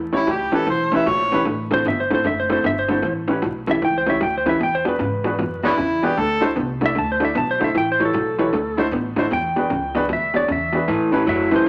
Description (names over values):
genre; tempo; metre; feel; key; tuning
blues; 153 BPM; 4/4; swing 63% on 8ths; A mixolydian; A4 = 440 Hz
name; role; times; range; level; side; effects
electric guitar through a small old amp; riff; 0.0-11.7 s; E2 to B3; -24 LUFS; equal; none
upright bass; bass; 0.0-11.7 s; F#1 to A2; -34 LUFS; equal; none
clear upright piano; accompaniment; 0.1-11.6 s; C4 to D5; -27 LUFS; equal; none
warm harmonica; second line; 0.2-1.5, 5.6-6.4 s; B3 to E5; -23 LUFS; equal; overdrive
clean lap steel guitar; melody; 1.7-11.7 s; A4 to A5; -24 LUFS; equal; none
room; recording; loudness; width
moderate large studio reverb, RT60 1.2 s; vinyl crackle; -20 LUFS; mono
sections
0.0-10.9 A section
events
none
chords
0.0 A9; 1.5 D9; 3.0 A9; 4.6 E9; 6.2 D9; 7.7 A9; 8.5 D9; 9.3 E9; 10.9 A9